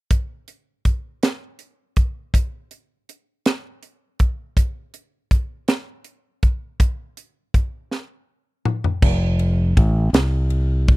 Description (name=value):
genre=slow gospel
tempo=54 BPM (dotted quarters)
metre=6/8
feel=straight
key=F major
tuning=A4 = 440 Hz
part: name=crisp fusion drum kit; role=drums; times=0.1-11.0 s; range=crash cymbal, hi-hat, kick drum, ride cymbal, snare drum, toms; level=-17 LUFS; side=equal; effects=none
part: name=fingered electric bass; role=bass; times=9.0-11.0 s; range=F1 to C2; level=-18 LUFS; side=equal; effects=none
room=little or no reverb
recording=dry, close 1970s-style studio recording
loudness=-19 LUFS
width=side -21 dB against mid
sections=0.1-9.0 A section; 9.0-11.0 B section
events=drum fill 7.9-9.0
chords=none